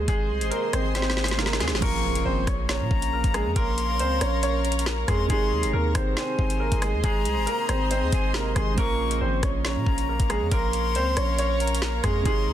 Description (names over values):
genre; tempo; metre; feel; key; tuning
hip hop, drill; 138 BPM; 4/4; half-time; Bb minor; A4 = 440 Hz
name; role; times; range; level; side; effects
warm baby grand piano; melody; 0.0-12.5 s; Ab3 to Db5; -28 LUFS; right 2 dB; low-pass filter
dark concert grand piano; accompaniment; 0.0-12.5 s; C3 to Bb4; -34 LUFS; right 6 dB; low-pass filter
granular cloud pad; sustained chords; 0.0-12.5 s; Ab4 to C6; -33 LUFS; equal; built-in reverb
long sustained 808-style bass; bass; 0.0-12.5 s; Ab1 to Bb2; -27 LUFS; equal; none
drill drum kit; drums; 0.1-12.4 s; crash cymbal, hi-hat, kick drum, rim click, snare drum; -26 LUFS; equal; none
riser and impact; sound effects; 0.7-3.6 s; none; -38 LUFS; equal; none
breathy silver concert flute; second line; 1.8-12.5 s; Ab5 to Db6; -32 LUFS; left 6 dB; ping-pong delay
room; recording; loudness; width
digital ambience; dense, heavily limited modern master; -22 LUFS; side -11 dB against mid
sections
0.0-1.8 A section; 1.8-12.5 B section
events
drum fill 1.0-1.8; impact 1.8-3.6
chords
0.0 Ab; 1.8 Bbm; 5.3 Ab; 8.8 Bbm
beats
| 0.08 0.52 0.95 1.39 | 1.82 2.25 2.69 3.12 | 3.56 3.99 4.43 4.86 | 5.30 5.73 6.17 6.60 | 7.04 7.47 7.91 8.34 | 8.78 9.21 9.65 10.08 | 10.52 10.95 11.38 11.82 | 12.26